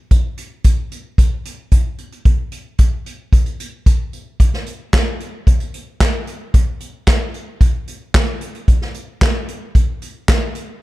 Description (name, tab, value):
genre	pop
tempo	112 BPM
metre	4/4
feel	straight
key	none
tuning	none
part	unplugged drum kit	drums	0.1-10.7 s	handclaps, hi-hat, kick drum, snare drum	-14 LUFS	equal	none
room	little or no reverb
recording	dark, warm production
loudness	-15 LUFS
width	side -18 dB against mid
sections	0.0-10.8 A section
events	none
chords	none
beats	| 0.11 0.65 1.18 1.72 | 2.25 2.79 3.33 3.86 | 4.40 4.93 5.47 6.00 | 6.54 7.07 7.61 8.14 | 8.68 9.21 9.75 10.29